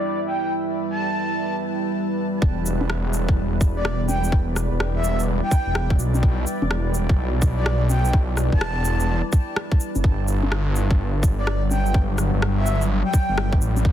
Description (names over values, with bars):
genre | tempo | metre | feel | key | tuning
future garage | 126 BPM | 4/4 | swing 64% on 16ths | E minor | A4 = 439 Hz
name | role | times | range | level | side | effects
breathy flute-like synth lead | melody | 0.0-13.5 s | D5 to A5 | -29 LUFS | equal | analog chorus, ping-pong delay
deep dark ambient pad | sustained chords | 0.0-13.9 s | F#3 to E5 | -27 LUFS | right 1 dB | chorus, built-in reverb, sidechain pumping
electronic shaker, bongos and rim click | drums | 0.3-13.8 s | none | -28 LUFS | left 1 dB | low-pass filter on perc, soft clipping on snare, low-pass filter on snare
swelling detuned saw bass | bass | 2.4-13.9 s | E1 to B1 | -22 LUFS | equal | sidechain pumping
electronic kick drum | drums | 2.4-13.9 s | none | -18 LUFS | equal | none
room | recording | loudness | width
little or no reverb | dense, heavily limited modern master, low-pass filter | -19 LUFS | side -11 dB against mid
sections
0.0-2.4 A section; 2.4-13.9 B section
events
none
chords
0.0 Em; 2.4 Em7; 10.0 Gmaj7